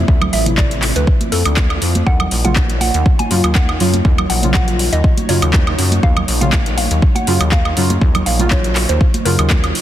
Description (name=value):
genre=deep house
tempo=121 BPM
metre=4/4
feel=swing 54% on 16ths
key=unclear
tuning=A4 = 439 Hz
part: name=soft string machine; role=sustained chords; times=0.0-9.8 s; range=F3 to D5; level=-26 LUFS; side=left 1 dB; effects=ensemble chorus, sidechain pumping
part: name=rubbery square bass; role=bass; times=0.0-9.7 s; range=A1 to Gb2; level=-18 LUFS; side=equal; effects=sidechain pumping
part: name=electronic kick drum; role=drums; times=0.1-9.6 s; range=none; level=-14 LUFS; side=equal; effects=overdrive
part: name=deep house drum kit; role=drums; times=0.2-9.8 s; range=handclaps, hi-hat, woodblock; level=-20 LUFS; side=equal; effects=overdrive
part: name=congas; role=percussion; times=0.2-9.6 s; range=none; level=-25 LUFS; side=right 4 dB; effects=none
part: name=mallet-like synth pluck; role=melody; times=0.3-9.8 s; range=A4 to G#5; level=-24 LUFS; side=right 1 dB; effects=chorus, phaser, cassette tape, tape echo
part: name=deep mellow chord stab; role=stabs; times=0.5-9.8 s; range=C3 to F4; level=-21 LUFS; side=equal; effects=chorus, sidechain pumping, tape echo
room=light reverb, digital ambience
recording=dense, heavily limited modern master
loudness=-12 LUFS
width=side -12 dB against mid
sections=0.0-9.8 A section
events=none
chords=0.0 Dm9; 2.1 Ebm9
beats=| 0.08 0.58 1.07 1.57 | 2.07 2.56 3.06 3.55 | 4.05 4.54 5.04 5.54 | 6.03 6.53 7.03 7.52 | 8.02 8.51 9.01 9.50